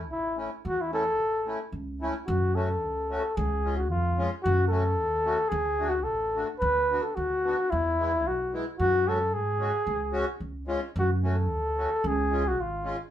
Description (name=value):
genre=alpine folk, alpine dance band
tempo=111 BPM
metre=2/4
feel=rubato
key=F# minor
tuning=A4 = 440 Hz
part: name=upright bass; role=bass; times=0.0-12.9 s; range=G#1 to G#2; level=-30 LUFS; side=equal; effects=none
part: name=mellow flugelhorn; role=melody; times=0.1-13.0 s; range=E4 to B4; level=-26 LUFS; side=left 1 dB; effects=none
part: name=accordion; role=accompaniment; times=0.4-13.0 s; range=G#3 to F#4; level=-33 LUFS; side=left 2 dB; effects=none
room=moderate studio reverb, RT60 0.5 s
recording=band playing live in one room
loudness=-25 LUFS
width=side -11 dB against mid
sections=0.0-2.3 A section; 2.3-13.1 B section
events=none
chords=0.0 A; 2.3 F#m; 3.4 C#; 4.5 F#m; 5.5 D; 6.6 Bm/D; 7.7 E; 8.8 F#sus2; 9.9 C#sus4; 10.4 C#; 11.0 F#m; 12.0 C#